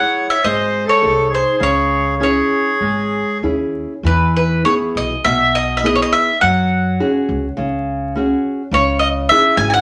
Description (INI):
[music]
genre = fado-style ballad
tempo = 103 BPM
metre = 4/4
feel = rubato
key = C# minor, E major from 4.0 s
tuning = A4 = 440 Hz
[part]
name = bowl-back mandolin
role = melody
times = 0.0-9.8 s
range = B4 to G#5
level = -18 LUFS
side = equal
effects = none
[part]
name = accordion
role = second line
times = 0.0-3.4 s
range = G#4 to C#5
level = -22 LUFS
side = equal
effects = none
[part]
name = nylon-string guitar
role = accompaniment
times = 0.0-9.8 s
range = B2 to C#5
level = -21 LUFS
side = equal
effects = none
[part]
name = upright bass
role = bass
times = 0.0-9.8 s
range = G#1 to F#2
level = -26 LUFS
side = equal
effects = none
[sound]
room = wet studio reverb, RT60 0.6 s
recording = vinyl crackle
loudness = -16 LUFS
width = mono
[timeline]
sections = 0.0-4.0 A section; 4.0-9.8 B section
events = none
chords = 0.4 G#; 1.6 C#m; 4.0 E; 6.4 F#sus2; 8.7 C#m